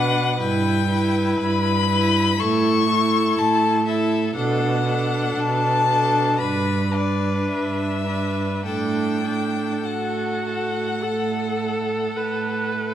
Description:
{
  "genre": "classical, slow romantic movement for string quartet",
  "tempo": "50-62 BPM",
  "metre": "4/4",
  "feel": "rubato",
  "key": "unclear",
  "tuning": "A4 = 439 Hz",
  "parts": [
    { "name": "clear violin", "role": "melody", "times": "0.0-12.7 s", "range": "D5 to C#6", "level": "-24 LUFS", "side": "left 6 dB", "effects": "none" },
    { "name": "clear violin", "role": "second line", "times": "0.0-12.9 s", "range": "A4 to B4", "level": "-27 LUFS", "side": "left 3 dB", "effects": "none" },
    { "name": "clear viola", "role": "accompaniment", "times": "0.0-12.9 s", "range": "D4 to B4", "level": "-25 LUFS", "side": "right 1 dB", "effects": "none" },
    { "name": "clear cello", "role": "bass", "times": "0.0-12.9 s", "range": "G2 to B2", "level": "-24 LUFS", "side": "right 4 dB", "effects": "none" }
  ],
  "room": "wet recital hall reverb, RT60 1.5 s",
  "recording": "none",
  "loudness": "-19 LUFS",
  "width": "side -10 dB against mid",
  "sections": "0.0-12.9 A section",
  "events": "none",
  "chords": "0.4 Em/G; 2.4 A; 4.4 Bm7; 6.4 Em7/G; 8.7 D/A; 11.0 F#madd11/A"
}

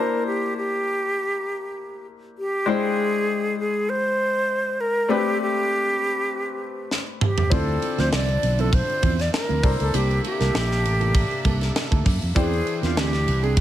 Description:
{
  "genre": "polished 1980s jazz-funk pop",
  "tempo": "99 BPM",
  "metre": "4/4",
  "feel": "swing 54% on 16ths",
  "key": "unclear",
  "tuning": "A4 = 441 Hz",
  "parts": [
    { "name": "breathy mellow silver concert flute", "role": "melody", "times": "0.0-13.6 s", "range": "F4 to D5", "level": "-24 LUFS", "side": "equal", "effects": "none" },
    { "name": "clear baby grand piano", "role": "accompaniment", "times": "0.0-13.6 s", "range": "E3 to A5", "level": "-28 LUFS", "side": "left 5 dB", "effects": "wide subtle chorus" },
    { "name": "tight funk drum kit", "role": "drums", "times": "6.9-13.6 s", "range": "hi-hat, kick drum, ride cymbal, snare drum, toms", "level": "-24 LUFS", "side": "right 1 dB", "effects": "gated reverb" },
    { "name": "chorused pulse-width pad", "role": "sustained chords", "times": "7.5-13.6 s", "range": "C3 to G5", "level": "-34 LUFS", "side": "left 2 dB", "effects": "none" },
    { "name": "mellow electric guitar", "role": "riff", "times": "7.5-13.5 s", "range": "F3 to Bb4", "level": "-31 LUFS", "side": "right 8 dB", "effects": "analog chorus" },
    { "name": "fingered electric bass", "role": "bass", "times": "7.5-13.6 s", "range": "A1 to F#2", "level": "-23 LUFS", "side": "equal", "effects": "none" }
  ],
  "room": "light reverb, small room ambience",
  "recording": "none",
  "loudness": "-20 LUFS",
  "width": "side -12 dB against mid",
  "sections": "0.0-13.6 A section",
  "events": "drum fill 6.9-7.5",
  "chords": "0.0 C13; 2.7 E7alt; 5.1 Am11; 7.5 Dm9; 9.6 C13; 12.4 E7alt"
}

